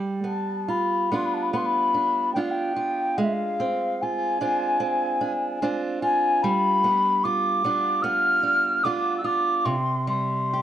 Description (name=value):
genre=celtic folk, Celtic slow air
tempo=73 BPM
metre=4/4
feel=rubato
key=unclear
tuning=A4 = 439 Hz
part: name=fingerpicked steel-string acoustic guitar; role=accompaniment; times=0.0-10.6 s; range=C3 to G4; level=-27 LUFS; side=right 3 dB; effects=plate reverb
part: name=mellow wooden flute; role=melody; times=0.3-10.6 s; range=E5 to F6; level=-22 LUFS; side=left 1 dB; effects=none
room=moderate studio ambience, RT60 0.5 s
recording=worn, warbling old tape, cassette tape, warbly pitch drift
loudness=-21 LUFS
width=side -10 dB against mid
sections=0.0-10.6 A section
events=none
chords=0.0 G7; 3.2 Fm6/Ab; 6.4 G7; 9.7 C5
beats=0.67 1.51 2.34 | 3.17 3.99 4.80 5.60 | 6.40 7.21 8.02 8.84 | 9.66 10.52